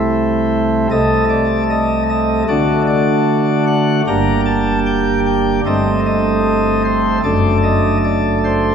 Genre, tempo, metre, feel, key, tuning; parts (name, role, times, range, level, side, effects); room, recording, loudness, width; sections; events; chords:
classical, chorale-style piece for pipe organ; 76 BPM; 4/4; straight; A4 = 440 Hz
pipe organ, sparkling flutes; solo; 0.0-8.7 s; F#1 to Bb5; -13 LUFS; equal
wet church reverb, RT60 3.2 s; heard from further back in the room; -13 LUFS; side -7 dB against mid
0.0-8.7 A section
0.0 Am/C; 0.9 Cm69; 2.5 D; 4.1 Gm; 5.6 Am7b5/G; 7.2 D/F#